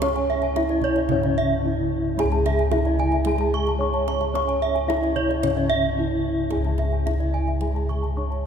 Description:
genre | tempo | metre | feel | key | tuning
Balinese gamelan | 111 BPM | 4/4 | straight | C# pelog | A4 = 440 Hz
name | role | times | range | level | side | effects
gamelan-type bronze metallophone | melody | 0.0-8.5 s | C#4 to C#5 | -25 LUFS | equal | none
gamelan-type bronze metallophone | accompaniment | 0.0-8.5 s | C#3 to C#4 | -32 LUFS | right 3 dB | none
gamelan-type bronze metallophone | arpeggios | 0.0-8.4 s | C#5 to C#6 | -29 LUFS | left 5 dB | none
gamelan-type bossed gongs | bass | 0.0-8.5 s | C#2 to C#5 | -25 LUFS | left 1 dB | none
kendang | percussion | 0.0-8.4 s | none | -34 LUFS | right 5 dB | none
gamelan-type bronze metallophone | arpeggios | 0.3-8.0 s | C#5 to C#6 | -28 LUFS | right 4 dB | none
room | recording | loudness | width
wet cathedral reverb, RT60 6.6 s | recorded in a church or concert hall | -20 LUFS | side -7 dB against mid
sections
0.0-8.5 A section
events
drum fill 1.6-2.2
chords
none

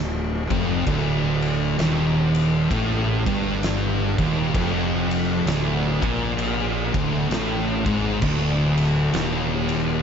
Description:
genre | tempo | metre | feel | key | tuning
stoner and doom metal | 65 BPM | 4/4 | swing 61% on 8ths | D phrygian | A4 = 443 Hz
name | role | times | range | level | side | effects
thick fuzz guitar | riff | 0.0-10.0 s | D2 to Bb2 | -25 LUFS | left 8 dB | distortion
thick fuzz guitar | riff | 0.0-10.0 s | D2 to Bb2 | -25 LUFS | right 7 dB | distortion
thick fuzz guitar | riff | 0.0-10.0 s | D2 to Bb2 | -28 LUFS | equal | distortion
fuzz fingered electric bass | bass | 0.0-10.0 s | D1 to Bb1 | -28 LUFS | equal | overdrive
oversized low-tuned drum kit | drums | 0.5-9.9 s | crash cymbal, kick drum, ride cymbal, snare drum | -27 LUFS | left 1 dB | none
room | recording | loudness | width
light reverb | nothing above 7.7 kHz | -20 LUFS | side -7 dB against mid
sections
0.0-10.0 A section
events
none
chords
0.0 Dm

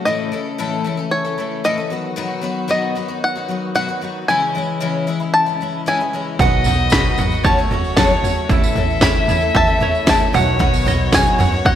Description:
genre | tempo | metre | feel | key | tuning
indie folk with a building arrangement | 114 BPM | 4/4 | straight | B mixolydian | A4 = 440 Hz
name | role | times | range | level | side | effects
bluegrass banjo | melody | 0.0-11.8 s | C#5 to B5 | -20 LUFS | left 1 dB | none
picked twelve-string acoustic guitar | accompaniment | 0.0-11.8 s | F#2 to A4 | -22 LUFS | left 5 dB | slapback echo
tonewheel organ | sustained chords | 0.0-11.8 s | C#3 to F#4 | -30 LUFS | right 1 dB | slow rotary speaker
clear fiddle | second line | 6.4-11.8 s | C#5 to E5 | -22 LUFS | left 4 dB | slapback echo
warm upright piano | accompaniment | 6.4-11.8 s | F#1 to E5 | -31 LUFS | right 8 dB | none
ukulele | arpeggios | 6.4-11.8 s | E4 to F#5 | -23 LUFS | right 8 dB | slapback echo, analog delay
upright bass | bass | 6.4-11.8 s | F#1 to F#2 | -22 LUFS | right 1 dB | none
techno drum kit | drums | 6.4-11.8 s | kick drum, snare drum, toms | -17 LUFS | right 1 dB | none
tambourine | percussion | 6.4-11.7 s | none | -33 LUFS | right 13 dB | none
room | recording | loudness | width
moderate lush hall reverb, RT60 2.0 s | big arena sound | -15 LUFS | side -10 dB against mid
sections
0.0-11.8 A section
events
none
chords
0.0 A; 1.9 B; 4.3 C#m; 6.4 B; 7.4 F#m; 8.5 A; 10.3 B

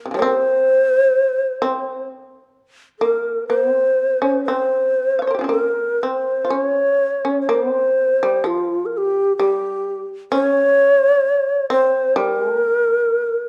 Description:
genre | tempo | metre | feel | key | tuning
japanese traditional, Japanese chamber music | 58-66 BPM | 4/4 | rubato | C in sen | A4 = 441 Hz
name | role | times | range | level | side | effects
shamisen | second line | 0.1-13.5 s | C3 to F5 | -25 LUFS | equal | none
mellow long shakuhachi | melody | 0.2-13.5 s | F4 to Db5 | -19 LUFS | equal | none
room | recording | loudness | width
moderate recital hall reverb, RT60 1.5 s | dark, warm production | -18 LUFS | mono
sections
0.0-6.5 A section; 6.5-13.5 B section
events
none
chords
none

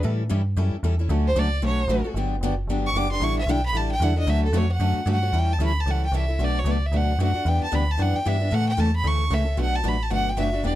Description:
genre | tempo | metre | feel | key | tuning
acoustic string swing (jazz manouche) | 226 BPM | 4/4 | swing 58% on 8ths | unclear | A4 = 441 Hz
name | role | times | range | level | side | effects
picked steel-string acoustic guitar | accompaniment | 0.0-10.8 s | B2 to A4 | -28 LUFS | left 4 dB | none
metallic FM bass | bass | 0.0-10.8 s | E1 to A2 | -23 LUFS | equal | none
picked steel-string acoustic guitar | accompaniment | 1.1-10.8 s | B2 to B4 | -33 LUFS | right 7 dB | none
clear violin | melody | 1.3-10.7 s | A4 to D6 | -27 LUFS | right 1 dB | none
room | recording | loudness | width
light reverb | close, detailed microphones | -20 LUFS | side -14 dB against mid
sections
0.0-5.3 A section; 5.3-10.8 B section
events
violin solo 0.0-5.3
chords
0.0 A7; 1.1 Dmaj7; 2.2 Gmaj7; 3.2 A7sus4; 4.3 Dmaj7; 5.3 A7; 6.4 Bm7; 7.5 Em7; 8.5 A; 9.6 Bm7

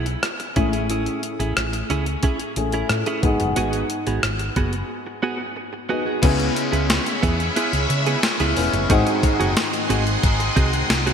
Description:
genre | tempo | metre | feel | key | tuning
1980s-style pop | 90 BPM | 4/4 | straight | C# minor | A4 = 441 Hz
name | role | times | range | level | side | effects
dark baby grand piano | accompaniment | 0.0-11.1 s | G#2 to B4 | -26 LUFS | left 3 dB | wide subtle chorus
direct-recorded clean electric guitar | riff | 0.0-11.1 s | B3 to G#4 | -26 LUFS | right 4 dB | analog chorus, ping-pong delay
woody fretless electric bass | bass | 0.0-11.1 s | E1 to C#3 | -24 LUFS | equal | none
clean 12-bit digital drum machine | drums | 0.1-11.1 s | crash cymbal, hi-hat, kick drum, rim click, snare drum, tambourine | -22 LUFS | equal | gated reverb
biting overdriven guitar | accompaniment | 6.2-11.1 s | G#2 to C#4 | -27 LUFS | left 2 dB | lush chorus
phased string machine | sustained chords | 6.2-11.1 s | G#4 to B#5 | -26 LUFS | equal | ensemble chorus, phaser
room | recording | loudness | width
moderate lush hall reverb, RT60 2.7 s | bright 1980s-style digital production | -18 LUFS | side -7 dB against mid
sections
0.0-6.2 A section; 6.2-11.1 B section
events
break 4.9-6.2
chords
0.0 C#m7; 0.6 Amaj7; 3.2 G#m7; 6.2 C#m7; 8.9 G#7

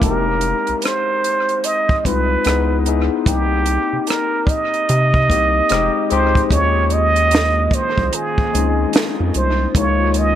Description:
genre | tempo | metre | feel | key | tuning
R&B, neo-soul | 74 BPM | 4/4 | swing 62% on 16ths | unclear | A4 = 441 Hz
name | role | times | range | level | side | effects
trumpet with plunger mute | melody | 0.0-10.4 s | G4 to Eb5 | -18 LUFS | right 3 dB | dub echo
overdriven tine electric piano | accompaniment | 0.0-10.4 s | Ab3 to Ab4 | -22 LUFS | left 11 dB | dub echo
rubbery square bass | bass | 0.0-10.4 s | F1 to C3 | -19 LUFS | equal | none
compact cocktail drum kit | drums | 0.0-10.4 s | hi-hat, kick drum, rim click, snare drum | -20 LUFS | right 1 dB | dub echo
hollow soft pad | sustained chords | 6.5-10.4 s | Eb3 to F4 | -28 LUFS | right 4 dB | chorus
room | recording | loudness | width
light reverb, small room ambience | echo-heavy mix | -14 LUFS | side -10 dB against mid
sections
0.0-6.5 A section; 6.5-10.4 B section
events
none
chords
0.0 Fm7; 2.5 Dbm7; 3.3 Cm7; 5.7 Fm9; 6.5 Eb13sus4; 9.7 Db69

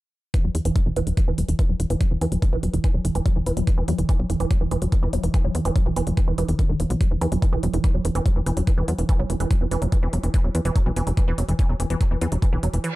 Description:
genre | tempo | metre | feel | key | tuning
psychedelic trance | 144 BPM | 4/4 | straight | unclear | A4 = 443 Hz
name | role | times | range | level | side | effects
woody wave-folded pluck | riff | 0.3-12.9 s | D#3 to F#3 | -27 LUFS | moving between left 3 dB and right 5 dB | chorus, auto-pan, sidechain pumping, ping-pong delay
electronic hi-hat | drums | 0.3-12.9 s | none | -37 LUFS | left 2 dB | none
electronic kick drum | drums | 0.3-12.5 s | none | -20 LUFS | equal | none
tight sequencer bass | bass | 0.4-12.8 s | E1 to E2 | -23 LUFS | equal | none
reverse cymbal | sound effects | 12.9-13.0 s | none | -32 LUFS | right 2 dB | none
room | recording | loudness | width
little or no reverb | dark, warm production | -20 LUFS | side -18 dB against mid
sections
0.3-13.0 A section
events
filter sweep on synth arpeggio sound 0.3-13.0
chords
0.3 E5

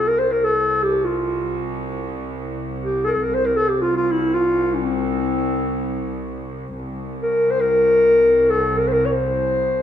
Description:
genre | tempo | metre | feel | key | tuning
Turkish makam ensemble | free time | none | none | C makam hicaz | A4 = 440 Hz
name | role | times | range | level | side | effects
dark clarinet | melody | 0.0-9.8 s | C4 to Db5 | -17 LUFS | left 1 dB | none
muted studio cello section | drone | 0.0-9.8 s | C2 | -26 LUFS | right 1 dB | none
room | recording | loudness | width
wet recital hall reverb, RT60 1.7 s | none | -17 LUFS | side -10 dB against mid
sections
0.0-6.8 A section; 6.8-9.8 A section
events
none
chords
none

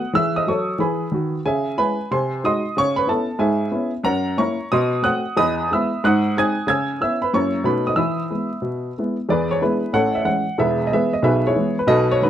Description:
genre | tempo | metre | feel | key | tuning
jazz, stride piano | 184 BPM | 4/4 | swing 66% on 8ths | E major | A4 = 441 Hz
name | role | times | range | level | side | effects
warm upright piano | solo | 0.0-12.3 s | E1 to G#6 | -18 LUFS | equal | none
room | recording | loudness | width
moderate club reverb, RT60 0.7 s | vinyl crackle | -18 LUFS | side -10 dB against mid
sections
0.0-9.3 A section; 9.3-12.3 B section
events
none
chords
0.1 E; 1.5 C#m; 2.1 G#7/B#; 2.8 C#m7; 4.1 F#7; 4.7 B7b9; 5.4 E; 6.0 G#7; 6.7 C#m7; 7.3 F#7; 7.7 B9; 8.0 E; 9.3 E7; 9.9 Amaj7; 10.6 E

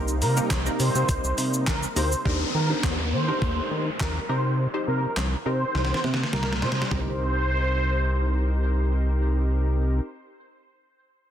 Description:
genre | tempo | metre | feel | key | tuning
dance-pop | 103 BPM | 4/4 | straight | C minor | A4 = 440 Hz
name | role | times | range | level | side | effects
funky polysynth comp | accompaniment | 0.0-10.0 s | Bb3 to C5 | -31 LUFS | equal | chorus, sidechain pumping
lush unison pad | sustained chords | 0.0-2.2 s | C3 to Eb4 | -33 LUFS | right 1 dB | chorus, phaser, sidechain pumping
chorused synth bass | bass | 0.0-10.0 s | C2 to Eb3 | -24 LUFS | equal | sidechain pumping
gated 80s digital drum machine | drums | 0.1-7.1 s | handclaps, hi-hat, kick drum, shaker, snare drum, toms | -27 LUFS | equal | gated reverb, gated reverb snare, overdrive
filtered supersaw swell | melody | 0.2-8.6 s | Bb4 to C5 | -30 LUFS | right 1 dB | sidechain pumping, tape echo
group handclap | percussion | 0.5-1.8 s | none | barely audible | none | none
downlifter | sound effects | 2.3-6.9 s | none | -32 LUFS | left 1 dB | none
room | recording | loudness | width
little or no reverb | dense, heavily limited modern master | -22 LUFS | side -10 dB against mid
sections
0.0-2.3 A section; 2.3-6.9 B section; 6.9-9.2 C section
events
drop 0.0-2.3; drum fill 5.7-6.9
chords
0.0 Cm7; 2.3 Ebmaj7; 4.3 Cm7

